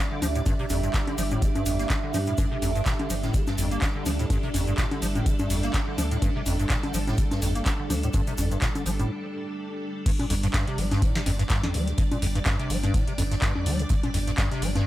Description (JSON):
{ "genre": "acid house", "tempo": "125 BPM", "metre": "4/4", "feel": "swing 56% on 16ths", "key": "unclear", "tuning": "A4 = 440 Hz", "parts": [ { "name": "string machine, full ensemble", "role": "sustained chords", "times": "0.0-14.9 s", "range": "G3 to D5", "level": "-33 LUFS", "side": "equal", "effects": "ensemble chorus, sidechain pumping" }, { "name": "acid bass, square", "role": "riff", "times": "0.0-14.9 s", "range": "G1 to Bb3", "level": "-29 LUFS", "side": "equal", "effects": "ensemble chorus, sidechain pumping" }, { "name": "deep dark ambient pad", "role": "texture", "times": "0.0-9.1 s", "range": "D4 to E5", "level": "-36 LUFS", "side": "right 6 dB", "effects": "chorus, built-in reverb, sidechain pumping" }, { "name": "round analog bass", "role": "bass", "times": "0.2-14.8 s", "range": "G1 to G2", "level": "-28 LUFS", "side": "equal", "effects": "sidechain pumping" }, { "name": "booming analog drum machine", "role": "drums", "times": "0.2-14.8 s", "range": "congas, crash cymbal, handclaps, hi-hat, snare drum", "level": "-31 LUFS", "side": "left 1 dB", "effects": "none" }, { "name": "huge arena drum kit", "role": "drums", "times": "0.2-14.9 s", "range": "hi-hat, snare drum", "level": "-42 LUFS", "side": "right 3 dB", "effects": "none" }, { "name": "egg shaker", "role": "percussion", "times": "0.2-9.1 s", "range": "none", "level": "-40 LUFS", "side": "left 1 dB", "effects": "none" }, { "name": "electronic kick drum", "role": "drums", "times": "0.5-14.5 s", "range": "none", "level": "-26 LUFS", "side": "equal", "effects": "none" } ], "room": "little or no reverb", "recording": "none", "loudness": "-23 LUFS", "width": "side -14 dB against mid", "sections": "0.0-10.1 A section; 10.1-14.9 B section", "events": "break 9.1-10.1; drop 10.1-14.9", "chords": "0.0 G5", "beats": "| 0.46 0.94 1.42 1.90 | 2.38 2.86 3.34 3.82 | 4.30 4.78 5.26 5.74 | 6.22 6.70 7.18 7.66 | 8.14 8.62 9.10 9.58 | 10.06 10.54 11.02 11.50 | 11.98 12.46 12.94 13.42 | 13.90 14.38 14.86" }